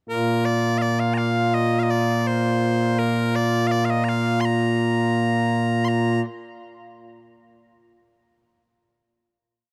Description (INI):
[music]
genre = scottish traditional, Scottish pipe music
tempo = 83 BPM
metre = 2/4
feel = straight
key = Bb major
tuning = A4 = 440 Hz
[part]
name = loud bright bagpipes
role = solo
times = 0.1-6.2 s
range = Bb2 to C6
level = -22 LUFS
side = equal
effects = none
[sound]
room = light reverb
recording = dark, warm production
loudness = -21 LUFS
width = mono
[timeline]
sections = 0.1-5.9 A section; 5.9-7.3 final note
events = none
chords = none